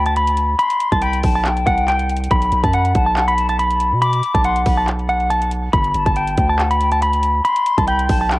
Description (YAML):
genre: hip hop, trap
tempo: 140 BPM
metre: 4/4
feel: half-time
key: B phrygian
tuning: A4 = 437 Hz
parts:
  - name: clean electric guitar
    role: melody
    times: 0.0-8.3 s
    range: F#5 to B5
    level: -17 LUFS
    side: equal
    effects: spring reverb, low-pass filter, cassette tape, tape echo
  - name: hollow concert flute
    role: second line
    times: 0.0-8.4 s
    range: F#5 to D6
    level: -25 LUFS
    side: left 6 dB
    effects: cassette tape, tape echo
  - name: long sustained 808-style bass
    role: bass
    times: 0.0-8.4 s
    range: G1 to B2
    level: -20 LUFS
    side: equal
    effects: none
  - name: trap drum kit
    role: drums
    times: 0.1-8.4 s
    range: handclaps, hi-hat, kick drum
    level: -21 LUFS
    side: equal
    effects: cassette tape
room: little or no reverb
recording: home recording on cassette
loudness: -14 LUFS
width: side -19 dB against mid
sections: 0.0-8.4 A section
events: none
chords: 0.0 G; 0.6 C5; 2.3 B5; 5.7 G; 7.4 C5